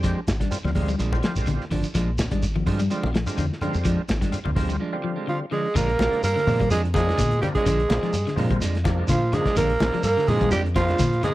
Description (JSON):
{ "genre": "afrobeat", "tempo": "126 BPM", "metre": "4/4", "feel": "swing 54% on 16ths", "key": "Bb mixolydian", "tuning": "A4 = 438 Hz", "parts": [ { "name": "overdriven tonewheel organ", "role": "accompaniment", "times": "0.0-11.3 s", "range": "C3 to G4", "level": "-33 LUFS", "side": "equal", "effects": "slow rotary speaker, chorus vibrato" }, { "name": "electric guitar at the edge of break-up", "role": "arpeggios", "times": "0.0-11.3 s", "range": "D3 to G3", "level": "-30 LUFS", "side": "left 5 dB", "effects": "wide subtle chorus" }, { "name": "electric guitar at the edge of break-up", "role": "stabs", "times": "0.0-11.0 s", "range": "F3 to D4", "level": "-31 LUFS", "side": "right 4 dB", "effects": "none" }, { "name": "deep dub fingered electric bass", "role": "bass", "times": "0.0-11.2 s", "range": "Ab1 to Bb2", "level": "-25 LUFS", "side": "equal", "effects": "none" }, { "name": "warm soul drum kit", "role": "drums", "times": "0.0-11.3 s", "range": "crash cymbal, hi-hat, kick drum, snare drum", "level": "-27 LUFS", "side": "equal", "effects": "none" }, { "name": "congas", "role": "percussion", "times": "0.0-11.3 s", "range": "none", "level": "-31 LUFS", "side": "left 1 dB", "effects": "none" }, { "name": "shekere", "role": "percussion", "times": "0.0-11.3 s", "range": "none", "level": "-32 LUFS", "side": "right 1 dB", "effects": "none" }, { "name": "raspy alto saxophone", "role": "melody", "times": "5.3-11.3 s", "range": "F4 to Bb4", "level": "-24 LUFS", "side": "right 2 dB", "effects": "none" }, { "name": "clear tenor saxophone", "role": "second line", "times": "5.3-11.3 s", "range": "F3 to Bb3", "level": "-29 LUFS", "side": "right 3 dB", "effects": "none" } ], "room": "small room ambience", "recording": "dry, close 1970s-style studio recording", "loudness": "-20 LUFS", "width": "side -16 dB against mid", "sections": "0.0-5.8 A section; 5.8-11.3 B section", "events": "break 4.8-5.8", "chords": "0.0 Bb7" }